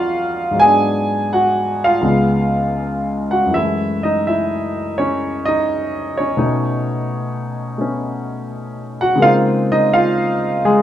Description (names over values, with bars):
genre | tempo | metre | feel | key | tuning
solo jazz | 84 BPM | 4/4 | swing 69% on 8ths, rubato | unclear | A4 = 440 Hz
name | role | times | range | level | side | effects
warm grand piano | solo | 0.0-10.8 s | Db2 to Ab5 | -15 LUFS | equal | none
room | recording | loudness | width
wet studio reverb, RT60 0.8 s | band playing live in one room | -15 LUFS | side -11 dB against mid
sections
0.0-10.8 A section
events
none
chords
0.0 Fm7; 0.6 Abm7b5; 2.0 Db7; 3.5 Gbm9; 6.4 Cb9; 9.2 Dbmaj13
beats
| 0.58 1.30 2.04 2.79 | 3.53 4.26 4.97 5.68 | 6.38 7.10 7.80 8.51 | 9.22 9.93 10.64